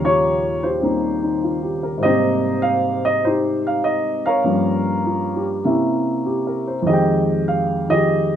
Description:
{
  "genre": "solo jazz",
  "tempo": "99 BPM",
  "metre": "4/4",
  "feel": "swing 69% on 8ths",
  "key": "F minor",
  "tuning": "A4 = 440 Hz",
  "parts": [
    { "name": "dark upright piano", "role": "solo", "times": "0.0-8.4 s", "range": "Eb2 to G5", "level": "-17 LUFS", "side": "equal", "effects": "none" }
  ],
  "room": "moderate club reverb, RT60 0.7 s",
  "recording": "nothing above 10.5 kHz",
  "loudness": "-17 LUFS",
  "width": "side -9 dB against mid",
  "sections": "0.0-8.4 A section",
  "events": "none",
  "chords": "0.0 Eb13; 2.0 Abmaj9; 4.4 Gm7b5; 5.7 C7b9; 6.9 Fm9",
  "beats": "0.20 0.81 1.41 | 2.02 2.62 3.23 3.83 | 4.44 5.05 5.65 6.26 | 6.86 7.47 8.07"
}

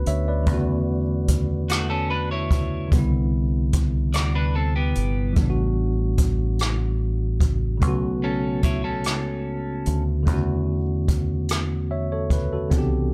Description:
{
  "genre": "slow six-eight R&B",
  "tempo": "49 BPM (dotted quarters)",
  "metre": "6/8",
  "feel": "straight",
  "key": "unclear",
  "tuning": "A4 = 440 Hz",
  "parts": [
    { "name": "tine electric piano", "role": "accompaniment", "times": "0.0-13.1 s", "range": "C3 to E5", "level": "-28 LUFS", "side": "equal", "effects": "none" },
    { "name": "deep dub fingered electric bass", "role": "bass", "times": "0.0-13.1 s", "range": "G1 to E2", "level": "-27 LUFS", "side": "equal", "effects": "none" },
    { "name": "jazz brush drum kit", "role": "drums", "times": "0.1-12.9 s", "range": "hi-hat, kick drum, rim click", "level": "-26 LUFS", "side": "equal", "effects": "none" },
    { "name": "electric guitar at the edge of break-up", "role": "second line", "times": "1.7-10.0 s", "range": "A3 to D5", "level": "-31 LUFS", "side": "equal", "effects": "subtle chorus, plate reverb" }
  ],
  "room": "light reverb",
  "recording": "none",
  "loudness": "-23 LUFS",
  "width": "mono",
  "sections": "0.0-13.1 A section",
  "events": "none",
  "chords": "0.5 E13sus4; 2.9 Cmaj9; 5.4 A13sus4; 7.8 Bm9; 10.3 E13sus4",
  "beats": "| 0.47 1.70 | 2.92 4.15 | 5.37 6.59 | 7.82 9.04 | 10.27 11.49 | 12.72"
}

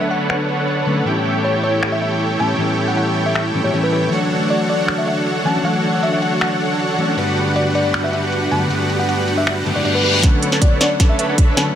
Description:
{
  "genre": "future bass",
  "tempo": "157 BPM",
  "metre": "4/4",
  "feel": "half-time",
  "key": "D major",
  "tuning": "A4 = 439 Hz",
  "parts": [
    { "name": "bell-like FM electric piano", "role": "melody", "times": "0.0-11.7 s", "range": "B4 to A5", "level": "-23 LUFS", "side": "equal", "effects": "chorus, sidechain pumping, ping-pong delay" },
    { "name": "mellow electric guitar", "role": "accompaniment", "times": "0.0-11.7 s", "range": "G2 to C#5", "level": "-22 LUFS", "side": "left 2 dB", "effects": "sidechain pumping" },
    { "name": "dark symphonic string section", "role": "sustained chords", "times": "0.0-11.8 s", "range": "D3 to F#5", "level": "-27 LUFS", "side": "equal", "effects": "sidechain pumping, low-pass filter" },
    { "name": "dense compressed supersaw", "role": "riff", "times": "0.0-11.7 s", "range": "D4 to B5", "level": "-19 LUFS", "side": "right 1 dB", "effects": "sidechain pumping, low-pass filter" },
    { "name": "trap drum kit", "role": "drums", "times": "0.1-11.6 s", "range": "finger snaps, hi-hat, snare drum", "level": "-25 LUFS", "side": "equal", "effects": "high-pass filter on hats, low-pass filter on hats, studio reverb, high-pass filter on snare, low-pass filter on snare" },
    { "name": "reverse cymbal and riser", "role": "sound effects", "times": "9.7-11.8 s", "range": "none", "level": "-22 LUFS", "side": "left 3 dB", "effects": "none" },
    { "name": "electronic kick drum", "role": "drums", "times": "10.2-11.5 s", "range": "none", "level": "-13 LUFS", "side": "equal", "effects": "studio reverb" }
  ],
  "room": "light reverb",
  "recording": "none",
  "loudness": "-15 LUFS",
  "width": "side -10 dB against mid",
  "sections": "0.0-10.2 A section; 10.2-11.8 B section",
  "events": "reverse cymbal 9.7-10.2; build-up 10.2-11.8; drum fill 10.2-11.8",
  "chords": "0.0 Bm9; 1.1 A7; 4.1 Dmaj7; 7.2 Gmaj7; 10.2 Bm9",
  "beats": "0.30 0.68 | 1.06 1.44 1.83 2.21 | 2.59 2.97 3.35 3.74 | 4.12 4.50 4.88 5.27 | 5.65 6.03 6.41 6.79 | 7.18 7.56 7.94 8.32 | 8.71 9.09 9.47 9.85 | 10.23 10.62 11.00 11.38"
}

